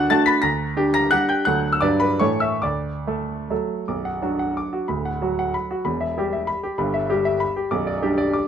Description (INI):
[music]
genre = classical, romantic triple-time dance for piano with dotted rhythms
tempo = 133-206 BPM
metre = 3/4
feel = rubato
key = D major, B minor from 3.9 s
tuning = A4 = 440 Hz
[part]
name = clear baby grand piano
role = solo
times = 0.0-8.5 s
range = B0 to B6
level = -19 LUFS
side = equal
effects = none
[sound]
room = moderate large studio reverb, RT60 0.9 s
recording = dark, warm production, faint mains hum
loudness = -20 LUFS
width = side -8 dB against mid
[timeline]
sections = 0.0-3.9 A section; 3.9-8.5 B section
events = none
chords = 0.4 Gm/D; 1.5 D; 1.8 Gmaj7; 2.2 A; 2.6 D; 3.9 Bm; 4.9 Bm/D; 5.8 Em; 6.8 Em/G; 7.7 G/B